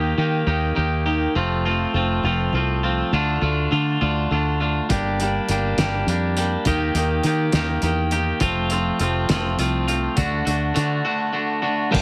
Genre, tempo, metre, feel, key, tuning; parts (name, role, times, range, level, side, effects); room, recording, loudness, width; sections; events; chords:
indie rock; 68 BPM (dotted quarters); 6/8; straight; A4 = 440 Hz
twangy electric guitar; riff; 0.0-12.0 s; G2 to G4; -24 LUFS; equal
fingered electric bass; bass; 0.0-12.0 s; F1 to Eb3; -26 LUFS; equal
cloth-damped thuddy drum kit; drums; 4.9-12.0 s; crash cymbal, hi-hat, kick drum, snare drum; -27 LUFS; equal
light reverb; heavily compressed radio sound; -21 LUFS; mono
0.0-11.9 A section
0.0 Eb; 1.4 F; 3.1 Dm; 4.9 Gm; 6.7 Eb; 8.4 F; 10.2 D